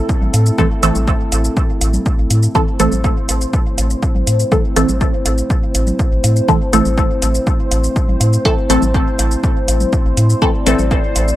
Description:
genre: dub techno.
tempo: 122 BPM.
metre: 4/4.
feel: straight.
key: A minor.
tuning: A4 = 440 Hz.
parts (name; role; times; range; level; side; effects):
dark analog pad; sustained chords; 0.0-11.4 s; A3 to D5; -22 LUFS; equal; chorus, sidechain pumping.
bubbling stepped-filter texture; texture; 0.0-11.4 s; A4 to C5; -27 LUFS; left 4 dB; chorus, built-in reverb, sidechain pumping.
electronic kick drum; drums; 0.1-11.0 s; none; -17 LUFS; equal; none.
electronic shaker and hi-hat; drums; 0.1-11.4 s; none; -22 LUFS; equal; overdrive.
woodblock and congas; percussion; 0.1-11.3 s; none; -28 LUFS; right 2 dB; sidechain pumping on perc, dub echo.
round analog bass; bass; 0.2-11.3 s; A1 to A2; -15 LUFS; equal; sidechain pumping.
filtered dub chord stab; stabs; 0.6-10.8 s; E3 to A4; -17 LUFS; equal; phaser, cassette tape, sidechain pumping, dub echo.
room: little or no reverb.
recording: dry, gritty hardware recording.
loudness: -12 LUFS.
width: side -14 dB against mid.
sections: 0.0-11.4 A section.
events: none.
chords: 0.0 Am.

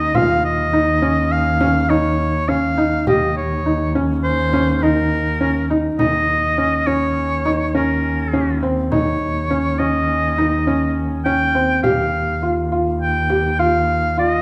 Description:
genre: contemporary instrumental, chamber music in an uneven meter.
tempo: 103 BPM.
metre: 5/4.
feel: straight.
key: Eb mixolydian.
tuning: A4 = 439 Hz.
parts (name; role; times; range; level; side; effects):
clear oboe; melody; 0.0-14.4 s; Bb4 to G5; -23 LUFS; equal; none.
felt-muted upright piano; arpeggios; 0.0-14.4 s; C4 to G4; -22 LUFS; equal; none.
muted double bass; bass; 0.0-14.4 s; Eb2; -24 LUFS; equal; none.
frame drum; percussion; 0.1-14.3 s; none; -30 LUFS; equal; none.
room: moderate recital hall reverb, RT60 1.6 s.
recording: none.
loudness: -18 LUFS.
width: mono.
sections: 0.0-6.0 A section; 6.0-14.4 B section.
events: none.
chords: 0.1 Db/Eb; 3.1 Eb7; 6.0 Eb7(no3); 11.8 Fsus2/Eb.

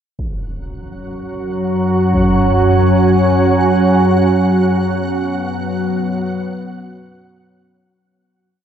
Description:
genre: dark ambient drone.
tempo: free time.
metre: none.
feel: none.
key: unclear.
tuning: A4 = 440 Hz.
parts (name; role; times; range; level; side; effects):
deep dark ambient pad; sustained chords; 1.1-7.9 s; F#3 to G#5; -18 LUFS; right 2 dB; chorus, built-in reverb.
organ-like drone; drone; 1.1-8.0 s; F#2 to F#3; -15 LUFS; equal; ensemble chorus, built-in reverb.
impact; percussion; 0.2-2.3 s; none; -27 LUFS; equal; low-pass filter on sfx.
flickering grainy texture; texture; 1.3-8.0 s; F#5; -29 LUFS; right 2 dB; built-in reverb.
room: wet cathedral reverb, RT60 5.2 s.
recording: none.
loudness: -12 LUFS.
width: side -8 dB against mid.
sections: 0.2-7.9 A section.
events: fade-in on synth texture 0.2-7.9; fade-in on impacts and reversed cymbals 0.2-7.9; fade-out 4.1-7.9.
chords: 0.2 F#5; 4.1 B5/F#.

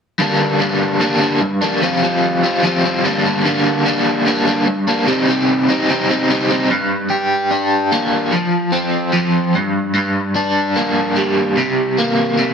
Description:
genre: rock.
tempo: 74 BPM.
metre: 4/4.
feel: straight.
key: G minor.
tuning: A4 = 440 Hz.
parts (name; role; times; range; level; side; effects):
overdriven electric guitar; solo; 0.2-12.5 s; G2 to G4; -14 LUFS; equal; tremolo.
room: moderate stone room reverb, RT60 1.4 s.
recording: band playing live in one room.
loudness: -14 LUFS.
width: side -6 dB against mid.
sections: 0.2-6.7 A section; 6.7-12.5 B section.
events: none.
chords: 0.2 Gm; 1.8 Fsus2; 3.0 Gm; 5.1 Cm; 6.7 Gm; 8.3 F5; 9.5 Gm; 11.6 C5.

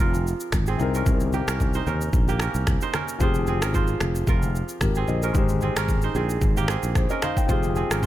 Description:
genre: afrobeats.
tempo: 112 BPM.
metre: 4/4.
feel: swing 55% on 16ths.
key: F minor.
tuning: A4 = 440 Hz.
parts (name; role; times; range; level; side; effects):
dark concert grand piano; accompaniment; 0.0-8.1 s; C3 to G5; -30 LUFS; left 6 dB; none.
kora; riff; 0.0-8.1 s; Bb3 to C5; -29 LUFS; right 7 dB; ping-pong delay.
sustaining fretless electric bass; bass; 0.0-8.1 s; F1 to Eb2; -25 LUFS; equal; none.
congas; percussion; 0.0-8.1 s; none; -33 LUFS; left 2 dB; none.
afro-pop drum kit; drums; 0.1-8.1 s; finger snaps, kick drum, rim click, shaker; -24 LUFS; equal; none.
room: small room ambience.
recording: none.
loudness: -21 LUFS.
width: side -14 dB against mid.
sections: 0.0-8.1 A section.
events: none.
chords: 0.0 Fmadd9; 0.8 Cm7; 3.2 Fmadd9; 5.3 Abmaj7; 7.5 Fmadd9.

